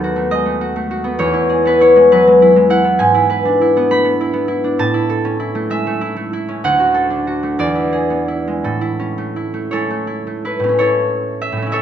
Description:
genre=classical, solo harp piece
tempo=54-70 BPM (dotted quarters)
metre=6/8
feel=rubato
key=A major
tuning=A4 = 440 Hz
part: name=concert harp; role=solo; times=0.0-11.8 s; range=D2 to B5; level=-13 LUFS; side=equal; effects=none
room=moderate recital hall reverb, RT60 1.6 s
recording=none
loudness=-13 LUFS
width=side -9 dB against mid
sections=0.0-10.8 A section; 10.8-11.8 B section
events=none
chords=0.0 B7/D#; 1.2 E; 3.0 E7/G#; 4.8 A; 6.6 D; 7.6 E7; 8.6 A

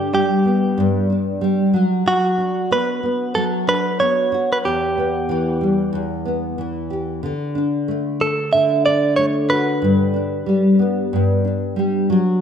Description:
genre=acoustic pop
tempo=93 BPM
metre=4/4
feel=swing 60% on 16ths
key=unclear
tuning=A4 = 438 Hz
part: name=direct-recorded clean electric guitar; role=melody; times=0.0-10.8 s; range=F#4 to E5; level=-19 LUFS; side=right 3 dB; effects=spring reverb
part: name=nylon-string guitar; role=accompaniment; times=0.0-12.4 s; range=E2 to G4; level=-18 LUFS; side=left 1 dB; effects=double-tracked left and right
room=moderate lush hall reverb, RT60 2.3 s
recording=rough home demo mix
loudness=-16 LUFS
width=side -8 dB against mid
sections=0.0-12.4 A section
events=none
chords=0.0 G; 1.7 Bm/F#; 4.7 Em; 7.2 D; 9.8 G

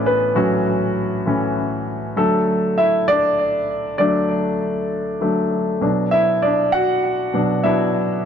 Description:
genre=pop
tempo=66 BPM (dotted quarters)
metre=6/8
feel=straight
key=unclear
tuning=A4 = 440 Hz
part: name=bright concert grand piano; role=solo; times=0.0-8.3 s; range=A2 to F#5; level=-17 LUFS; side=equal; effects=analog delay
room=moderate spring reverb, RT60 1.2 s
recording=echo-heavy mix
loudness=-17 LUFS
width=side -8 dB against mid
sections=0.0-8.3 A section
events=grand piano solo 0.0-8.3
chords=0.0 Aadd9; 2.2 D; 5.8 Bm

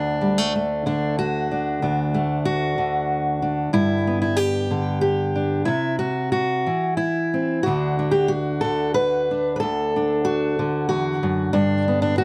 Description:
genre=folk, solo fingerstyle acoustic guitar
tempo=93 BPM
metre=3/4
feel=rubato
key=D mixolydian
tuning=A4 = 442 Hz
part: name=fingerpicked steel-string acoustic guitar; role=solo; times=0.0-12.2 s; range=D2 to B4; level=-22 LUFS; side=equal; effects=none
room=light reverb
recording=none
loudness=-22 LUFS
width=mono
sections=0.0-12.2 A section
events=none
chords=0.0 D; 3.7 G; 5.7 C; 7.7 D; 11.5 G

